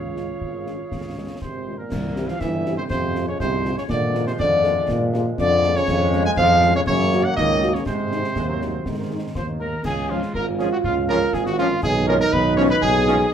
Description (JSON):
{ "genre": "military-style march for wind band", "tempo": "121 BPM", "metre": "2/4", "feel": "straight", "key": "Db major from 5.9 s", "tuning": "A4 = 440 Hz", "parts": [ { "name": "warm cornet", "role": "melody", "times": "0.0-13.3 s", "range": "F4 to Ab5", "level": "-25 LUFS", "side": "right 1 dB", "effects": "none" }, { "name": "clear woodwind section", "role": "second line", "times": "0.0-13.3 s", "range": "F4 to Ab5", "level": "-27 LUFS", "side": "left 3 dB", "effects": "none" }, { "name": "warm euphonium", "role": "second line", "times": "0.0-13.3 s", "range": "Bb2 to F4", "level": "-25 LUFS", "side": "right 3 dB", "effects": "none" }, { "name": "clear tuba", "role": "bass", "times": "0.0-13.2 s", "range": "G1 to Bb2", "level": "-24 LUFS", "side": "equal", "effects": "none" }, { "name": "mellow French horn section", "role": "accompaniment", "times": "0.2-13.2 s", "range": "F3 to Ab4", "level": "-28 LUFS", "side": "left 3 dB", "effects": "none" }, { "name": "concert snare drum, concert bass drum and clash cymbals", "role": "drums", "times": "0.2-13.2 s", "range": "none", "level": "-30 LUFS", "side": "left 1 dB", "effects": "none" }, { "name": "clear trombone section", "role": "sustained chords", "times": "1.9-13.2 s", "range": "Eb3 to Db4", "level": "-29 LUFS", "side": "right 2 dB", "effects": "none" }, { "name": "mellow wooden piccolo", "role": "second line", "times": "9.4-13.3 s", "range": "F5 to Db6", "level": "-29 LUFS", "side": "left 2 dB", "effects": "none" } ], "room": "wet studio reverb, RT60 0.5 s", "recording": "heard from further back in the room", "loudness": "-18 LUFS", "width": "side -8 dB against mid", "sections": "0.0-1.9 A section; 1.9-9.9 B section; 9.9-13.3 A section", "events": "none", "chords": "0.0 Db; 1.9 C; 2.9 Fm; 3.9 Bb7; 5.9 Db/F; 6.9 Gb; 7.9 Ab; 9.9 Db; 11.8 Db7/Cb", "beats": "0.41 | 0.91 1.41 | 1.91 2.40 | 2.90 3.40 | 3.89 4.39 | 4.89 5.38 | 5.88 6.38 | 6.87 7.37 | 7.87 8.36 | 8.86 9.35 | 9.85 10.35 | 10.84 11.34 | 11.84 12.33 | 12.83 13.32" }